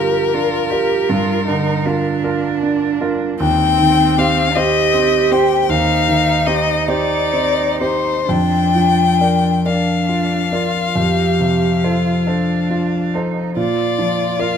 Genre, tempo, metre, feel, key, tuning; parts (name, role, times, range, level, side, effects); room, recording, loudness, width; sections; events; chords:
classical, slow romantic movement for piano trio; 41-54 BPM (dotted quarters); 12/8; rubato; Bb major; A4 = 439 Hz
rich violin; melody; 0.0-14.6 s; Bb4 to G5; -18 LUFS; left 8 dB
rich cello; second line; 0.0-14.6 s; C4 to G4; -20 LUFS; right 7 dB
warm concert grand piano; accompaniment; 0.0-14.6 s; Eb2 to D5; -18 LUFS; right 1 dB
light reverb; close, detailed microphones; -14 LUFS; side -7 dB against mid
0.0-14.6 A section
0.0 Gm7; 3.4 Cm/Eb; 8.3 Bb/F; 11.0 F; 13.6 Bb